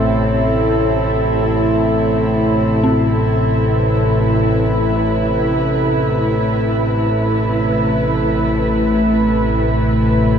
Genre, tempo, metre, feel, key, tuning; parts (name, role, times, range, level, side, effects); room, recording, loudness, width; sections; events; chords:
dark ambient drone; free time; A minor; A4 = 439 Hz
warm studio cello section; sustained chords; 0.0-10.4 s; C3 to B4; -18 LUFS; equal
analog drone; drone; 0.0-10.4 s; A1 to A2; -16 LUFS; equal; chorus
dark detuned synth bell; arpeggios; 2.8-10.4 s; C4; -26 LUFS; left 1 dB; chorus, tape echo
moderate huge ambient reverb, RT60 8.2 s; cassette tape; -14 LUFS; side -7 dB against mid
0.0-2.8 A section; 2.8-10.4 A section
0.0 Am; 2.8 Amadd9